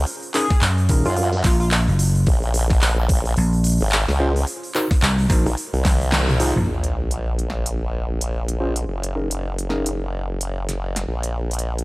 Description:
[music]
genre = glitch hop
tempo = 109 BPM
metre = 4/4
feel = swing 59% on 16ths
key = unclear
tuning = A4 = 439 Hz
[part]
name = formant-sweep wobble bass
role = bass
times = 0.0-11.8 s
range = Gb1 to Gb2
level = -22 LUFS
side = equal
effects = chorus
[part]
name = pop drum kit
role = drums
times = 0.1-11.8 s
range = handclaps, hi-hat, snare drum, toms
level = -24 LUFS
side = equal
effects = none
[part]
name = sync lead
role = melody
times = 0.3-1.7 s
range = F4 to Ab4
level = -27 LUFS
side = equal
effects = lush chorus, vintage 12-bit sampler grit, analog delay
[part]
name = tine electric piano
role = stabs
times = 0.3-9.9 s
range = Db4 to C5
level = -27 LUFS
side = equal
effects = overdrive, sidechain pumping, low-pass filter, analog delay
[part]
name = electronic kick drum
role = drums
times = 0.5-6.0 s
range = none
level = -18 LUFS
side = equal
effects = none
[part]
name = vintage slap bass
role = bass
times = 0.6-6.7 s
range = Eb1 to Gb2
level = -18 LUFS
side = equal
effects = tube saturation
[part]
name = sub drop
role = sound effects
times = 6.7-8.9 s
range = none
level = -29 LUFS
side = equal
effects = none
[sound]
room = light reverb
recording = dry, gritty hardware recording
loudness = -18 LUFS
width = side -23 dB against mid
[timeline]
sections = 0.0-6.7 A section; 6.7-11.8 B section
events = drop 0.0-6.7; drum fill 5.8-6.7; kick drops out 6.1-6.7; band accent 6.1; impact 6.7-8.9; filter sweep on tine electric piano 6.7-11.8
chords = 0.1 Gb6; 2.3 Bbm7; 4.5 Cm7b5; 5.6 Fm7; 6.7 N.C.; 8.9 Gb6; 11.1 N.C.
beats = | 0.07 0.62 1.17 1.72 | 2.27 2.82 3.37 3.92 | 4.47 5.02 5.57 6.12 | 6.67 7.22 7.77 8.32 | 8.88 9.43 9.98 10.53 | 11.08 11.63

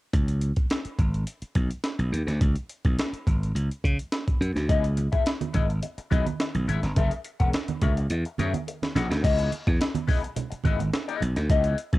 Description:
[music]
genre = funk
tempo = 106 BPM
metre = 4/4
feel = straight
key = C# dorian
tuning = A4 = 443 Hz
[part]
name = slap bass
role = bass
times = 0.1-12.0 s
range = E1 to C#3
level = -25 LUFS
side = equal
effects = none
[part]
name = breakbeat sampler-style drum kit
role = drums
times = 0.1-12.0 s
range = crash cymbal, hi-hat, kick drum, snare drum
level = -26 LUFS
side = equal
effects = cassette tape
[part]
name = electric guitar at the edge of break-up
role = accompaniment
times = 4.7-12.0 s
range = B3 to F#5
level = -30 LUFS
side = left 6 dB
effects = wah, cassette tape
[part]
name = congas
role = percussion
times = 4.7-11.6 s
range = none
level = -32 LUFS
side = right 6 dB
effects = none
[sound]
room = digital ambience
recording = home recording on cassette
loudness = -23 LUFS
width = side -18 dB against mid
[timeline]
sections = 0.1-9.2 A section; 9.2-12.0 B section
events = drum fill 8.1-9.2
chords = 0.1 C#m9; 7.0 F#9; 9.2 C#m9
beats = | 0.13 0.70 1.27 1.84 | 2.42 2.98 3.55 4.12 | 4.69 5.26 5.83 6.40 | 6.97 7.54 8.10 8.67 | 9.23 9.80 10.37 10.93 | 11.49

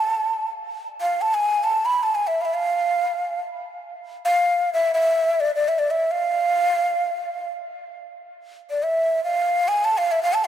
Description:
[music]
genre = Arabic maqam ensemble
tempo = free time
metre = none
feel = none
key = unclear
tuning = A4 = 440 Hz
[part]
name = breathy hollow ney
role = solo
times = 0.0-10.5 s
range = D5 to B5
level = -20 LUFS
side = equal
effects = tape echo
[sound]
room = moderate scoring stage reverb, RT60 1.4 s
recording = close, detailed microphones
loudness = -19 LUFS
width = side -10 dB against mid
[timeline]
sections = 0.0-10.5 A section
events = none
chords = none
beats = free time

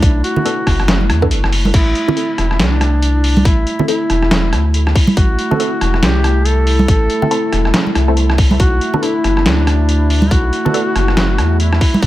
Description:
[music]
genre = deep dubstep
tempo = 140 BPM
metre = 4/4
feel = swing 60% on 16ths, half-time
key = A dorian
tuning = A4 = 441 Hz
[part]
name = clear duduk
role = melody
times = 0.0-12.1 s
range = D4 to A4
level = -20 LUFS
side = equal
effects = dub echo
[part]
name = dark analog pad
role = sustained chords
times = 0.0-12.1 s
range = A3 to E4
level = -22 LUFS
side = equal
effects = chorus
[part]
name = soft dub sub bass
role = bass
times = 0.0-12.1 s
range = E1 to E2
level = -14 LUFS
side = equal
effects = tube saturation
[part]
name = electronic kick drum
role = drums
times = 0.0-12.1 s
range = none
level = -13 LUFS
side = equal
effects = none
[part]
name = trip hop sampler-style drum kit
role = drums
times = 0.0-12.1 s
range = crash cymbal, hi-hat, rim click, snare drum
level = -19 LUFS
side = equal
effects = none
[part]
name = congas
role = percussion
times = 0.4-12.0 s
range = none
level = -18 LUFS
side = right 2 dB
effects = none
[part]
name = filtered dub chord stab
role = stabs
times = 0.5-10.8 s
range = B3 to A4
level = -23 LUFS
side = left 1 dB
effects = phaser, analog chorus, dub echo
[sound]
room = light reverb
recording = none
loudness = -11 LUFS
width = side -15 dB against mid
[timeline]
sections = 0.0-12.1 A section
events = kick drops out 1.3-1.7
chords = 0.0 Bm7; 1.7 Am; 8.6 Bm7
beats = | 0.03 0.45 0.88 1.31 | 1.74 2.17 2.60 3.03 | 3.45 3.88 4.31 4.74 | 5.17 5.60 6.03 6.45 | 6.88 7.31 7.74 8.17 | 8.60 9.03 9.45 9.88 | 10.31 10.74 11.17 11.60 | 12.03

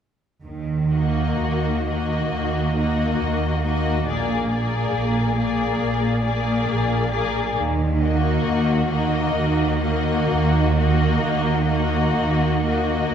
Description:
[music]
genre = classical, slow romantic movement for string orchestra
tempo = 67 BPM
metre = 4/4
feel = uneven beats, rubato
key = Eb minor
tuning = A4 = 437 Hz
[part]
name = rich symphonic cello section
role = bass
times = 0.4-13.1 s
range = Bb2 to Eb3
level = -24 LUFS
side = right 4 dB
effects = none
[part]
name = warm studio double bass section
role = bass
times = 0.4-13.1 s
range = Bb1 to Eb2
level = -24 LUFS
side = right 2 dB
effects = none
[part]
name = warm symphonic violin section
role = melody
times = 0.9-13.1 s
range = D5 to Eb5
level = -29 LUFS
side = left 4 dB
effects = none
[part]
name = rich studio violin section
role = second line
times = 0.9-13.1 s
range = Gb4 to Ab4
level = -27 LUFS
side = left 5 dB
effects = none
[part]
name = rich symphonic viola section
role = accompaniment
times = 0.9-13.1 s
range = Bb3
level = -25 LUFS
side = left 2 dB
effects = none
[sound]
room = wet scoring stage reverb, RT60 2.1 s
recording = heard from further back in the room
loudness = -19 LUFS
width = side -8 dB against mid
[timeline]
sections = 0.4-13.1 A section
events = none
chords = 0.4 Ebm; 4.1 Bb7; 7.6 Ebm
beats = | 0.44 1.40 2.32 3.21 | 4.08 4.97 5.84 6.70 | 7.58 8.47 9.38 10.31 | 11.23 12.17 13.13

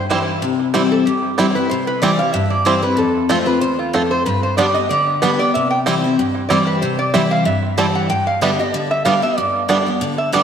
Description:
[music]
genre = bluegrass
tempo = 188 BPM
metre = 4/4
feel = swing 54% on 8ths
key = C major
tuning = A4 = 438 Hz
[part]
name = lap resonator guitar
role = melody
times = 0.0-10.4 s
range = F4 to A5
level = -19 LUFS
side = right 1 dB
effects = analog delay
[part]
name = picked steel-string acoustic guitar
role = accompaniment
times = 0.0-10.4 s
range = E2 to G4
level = -18 LUFS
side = left 3 dB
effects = lush chorus
[part]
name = bluegrass banjo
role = arpeggios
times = 0.1-10.4 s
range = G3 to F4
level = -21 LUFS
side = right 4 dB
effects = analog delay
[sound]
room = wet lush hall reverb, RT60 1.7 s, studio reverb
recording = dreamy mix soaked in reverb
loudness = -14 LUFS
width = side -8 dB against mid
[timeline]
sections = 0.4-10.4 A section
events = resonator guitar played with a steel bar solo 0.4-10.4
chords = 0.4 C; 3.0 F; 4.3 G; 5.5 C; 8.1 G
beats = 0.10 | 0.42 0.74 1.06 1.38 | 1.70 2.02 2.34 2.66 | 2.98 3.30 3.62 3.94 | 4.26 4.58 4.90 5.22 | 5.54 5.86 6.18 6.50 | 6.82 7.14 7.46 7.78 | 8.10 8.42 8.74 9.06 | 9.38 9.70 10.02 10.34

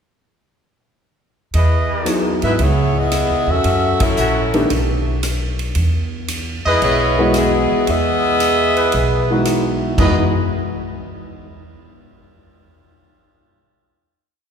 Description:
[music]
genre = jazz, big band swing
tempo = 114 BPM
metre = 4/4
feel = swing 69% on 8ths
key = E major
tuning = A4 = 440 Hz
[part]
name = clear trumpet section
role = stabs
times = 1.5-10.2 s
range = E4 to E5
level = -22 LUFS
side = equal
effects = none
[part]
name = upright bass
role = bass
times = 1.5-10.3 s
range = A#1 to G#2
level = -20 LUFS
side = equal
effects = none
[part]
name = swinging big-band drum kit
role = drums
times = 1.5-10.2 s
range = crash cymbal, hi-hat, kick drum, ride cymbal, rim click, toms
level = -25 LUFS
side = left 1 dB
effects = none
[part]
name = warm grand piano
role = accompaniment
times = 2.1-10.3 s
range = D#3 to D#5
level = -21 LUFS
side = equal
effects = none
[part]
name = warm saxophone section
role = melody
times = 2.4-9.5 s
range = F#3 to E5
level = -18 LUFS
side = left 1 dB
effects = none
[sound]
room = wet church reverb, RT60 3.0 s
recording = recorded in a church or concert hall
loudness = -14 LUFS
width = side -7 dB against mid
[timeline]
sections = 1.5-10.0 A section; 10.0-12.1 final chord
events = band accent 3.9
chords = 1.5 Emaj7; 2.6 C#m9; 3.6 F#m7; 4.7 N.C.; 5.8 Emaj7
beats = | 1.54 2.07 2.60 3.12 | 3.65 4.18 4.70 5.23 | 5.76 6.29 6.82 7.34 | 7.87 8.40 8.93 9.46 | 9.99

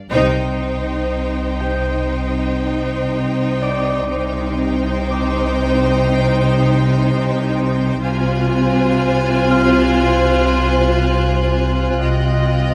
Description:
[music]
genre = cinematic, suspense film score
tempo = 61 BPM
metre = 4/4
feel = straight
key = C minor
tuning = A4 = 438 Hz
[part]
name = concert harp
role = texture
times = 0.0-12.5 s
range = G4 to F6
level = -29 LUFS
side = equal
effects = none
[part]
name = rich symphonic violin section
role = melody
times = 0.1-12.7 s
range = G5 to Ab5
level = -31 LUFS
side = equal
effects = none
[part]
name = warm symphonic violin section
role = second line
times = 0.1-12.7 s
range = C5 to Eb5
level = -24 LUFS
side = equal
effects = none
[part]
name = bright symphonic viola section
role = accompaniment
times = 0.1-12.7 s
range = Eb4 to F4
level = -24 LUFS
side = equal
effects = none
[part]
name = rich symphonic cello section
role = bass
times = 0.1-12.7 s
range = C3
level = -22 LUFS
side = equal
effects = none
[part]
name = rich symphonic double bass section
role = bass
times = 0.1-12.7 s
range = C2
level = -23 LUFS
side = equal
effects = none
[part]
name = rich studio violin section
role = texture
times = 8.0-12.7 s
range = C6 to F#6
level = -31 LUFS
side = equal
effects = none
[sound]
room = moderate scoring stage reverb, RT60 1.7 s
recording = none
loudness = -17 LUFS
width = mono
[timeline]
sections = 0.1-12.7 A section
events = band accent 0.1-1.1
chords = 0.1 Cm; 8.0 Fm/C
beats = | 0.11 1.12 2.11 3.11 | 4.09 5.08 6.07 7.04 | 8.03 9.02 10.01 11.01 | 12.03

